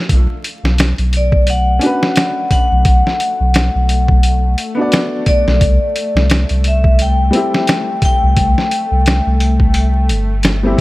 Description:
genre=trip hop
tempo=87 BPM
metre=4/4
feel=swing 57% on 16ths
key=unclear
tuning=A4 = 440 Hz
part: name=soft dub sub bass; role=bass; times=0.1-10.8 s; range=G1 to C2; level=-14 LUFS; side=equal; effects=none
part: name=boom bap sampler-style drum kit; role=drums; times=0.1-10.8 s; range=hi-hat, kick drum, snare drum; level=-15 LUFS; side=equal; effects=studio reverb
part: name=bowed-like drone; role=texture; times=1.0-10.8 s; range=A3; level=-25 LUFS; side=left 1 dB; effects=built-in reverb
part: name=vibraphone with hard mallets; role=melody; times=1.2-10.1 s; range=D5 to G5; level=-18 LUFS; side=left 2 dB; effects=tape echo
part: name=warm upright piano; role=accompaniment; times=1.8-10.8 s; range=G3 to D5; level=-19 LUFS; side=left 1 dB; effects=tremolo, tape echo
room=light reverb, small room ambience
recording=vinyl crackle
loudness=-11 LUFS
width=side -19 dB against mid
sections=0.1-10.8 A section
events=none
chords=0.1 Bmadd9; 5.6 C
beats=| 0.10 0.79 1.48 2.17 | 2.85 3.54 4.23 4.92 | 5.61 6.30 6.99 7.68 | 8.37 9.06 9.75 10.44

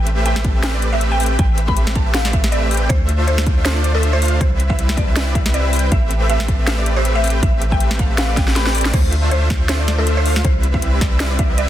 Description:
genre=future bass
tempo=159 BPM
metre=4/4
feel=swing 56% on 16ths, half-time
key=A minor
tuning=A4 = 445 Hz
part: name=mallet-like synth pluck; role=melody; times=0.0-11.7 s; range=A4 to B5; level=-25 LUFS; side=equal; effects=lush chorus, sidechain pumping, dub echo
part: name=supersaw chords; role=riff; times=0.0-11.7 s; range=G3 to A5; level=-22 LUFS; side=equal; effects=sidechain pumping
part: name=long sustained 808-style bass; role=bass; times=0.0-11.7 s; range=A1 to D2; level=-18 LUFS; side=equal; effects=sidechain pumping
part: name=trap drum kit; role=drums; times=0.1-11.7 s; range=crash cymbal, hi-hat, snare drum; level=-23 LUFS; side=equal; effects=none
part: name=electronic kick drum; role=drums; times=0.4-11.5 s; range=none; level=-18 LUFS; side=equal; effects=overdrive
room=light reverb, digital ambience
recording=dense, heavily limited modern master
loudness=-14 LUFS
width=side -12 dB against mid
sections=0.0-8.9 A section; 8.9-11.7 A section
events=drop 0.0-8.9, 8.9-11.7; drum fill 8.4-8.9; kick drops out 8.6-8.9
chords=0.0 Am9; 2.9 Dm9; 4.4 Cmaj7; 5.9 Am9; 8.9 Dm9; 10.4 Cmaj7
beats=0.26 0.64 1.01 | 1.39 1.77 2.14 2.52 | 2.90 3.28 3.65 4.03 | 4.41 4.79 5.16 5.54 | 5.92 6.29 6.67 7.05 | 7.43 7.80 8.18 8.56 | 8.94 9.31 9.69 10.07 | 10.45 10.82 11.20 11.58

